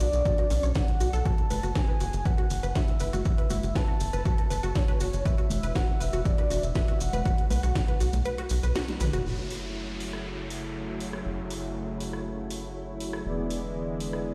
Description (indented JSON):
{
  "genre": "progressive house",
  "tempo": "120 BPM",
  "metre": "4/4",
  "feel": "straight",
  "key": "F# minor",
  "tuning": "A4 = 439 Hz",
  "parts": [
    { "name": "soft octave-layered synth lead", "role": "melody", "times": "0.0-8.8 s", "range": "C#5 to A5", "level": "-36 LUFS", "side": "equal", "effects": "chorus, tremolo, cassette tape, tape echo" },
    { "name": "unison pluck", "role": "arpeggios", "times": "0.0-9.2 s", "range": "C#4 to F#5", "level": "-38 LUFS", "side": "equal", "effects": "sidechain pumping, delay" },
    { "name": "tight sequencer bass", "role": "bass", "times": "0.0-14.3 s", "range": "E1 to B1", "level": "-32 LUFS", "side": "equal", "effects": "sidechain pumping" },
    { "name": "house drum kit", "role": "drums", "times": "0.0-14.2 s", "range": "hi-hat, rim click, snare drum, toms", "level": "-40 LUFS", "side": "equal", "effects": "none" },
    { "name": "maracas", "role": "percussion", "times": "0.0-9.2 s", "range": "none", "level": "-46 LUFS", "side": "equal", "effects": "none" },
    { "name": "electronic kick drum", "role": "drums", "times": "0.3-7.9 s", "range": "none", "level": "-28 LUFS", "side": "equal", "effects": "overdrive" },
    { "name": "cowbell and congas", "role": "percussion", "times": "0.4-8.5 s", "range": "none", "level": "-41 LUFS", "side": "equal", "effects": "sidechain pumping on perc" },
    { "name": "warm analog pad", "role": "sustained chords", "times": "9.3-14.3 s", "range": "C#3 to E4", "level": "-40 LUFS", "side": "equal", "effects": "chorus, tremolo, sidechain pumping" },
    { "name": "soft supersaw", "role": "stabs", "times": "9.3-14.3 s", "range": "E3 to D5", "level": "-38 LUFS", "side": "equal", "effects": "sidechain pumping, low-pass filter, delay" },
    { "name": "downlifter", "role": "sound effects", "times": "9.3-13.3 s", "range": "none", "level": "-45 LUFS", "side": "equal", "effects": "none" }
  ],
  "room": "light reverb, digital ambience",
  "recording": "played on a big sound system in a bare room, stone room reverb",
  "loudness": "-28 LUFS",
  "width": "mono",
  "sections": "0.0-9.3 A section; 9.3-14.3 B section",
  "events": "kick drops out 8.3-9.3; band accent 8.8; drum fill 8.9-9.3; filter sweep on supersaw synth 9.3-14.3",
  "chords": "0.0 Bm; 1.3 F#m7; 5.3 E5; 7.3 B5; 9.3 F#m7; 13.3 E7",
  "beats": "0.26 0.76 | 1.25 1.75 2.25 2.75 | 3.25 3.75 4.25 4.75 | 5.25 5.75 6.25 6.75 | 7.25 7.75 8.26 8.76 | 9.26 9.76 10.26 10.76 | 11.26 11.76 12.26 12.76 | 13.26 13.76 14.26"
}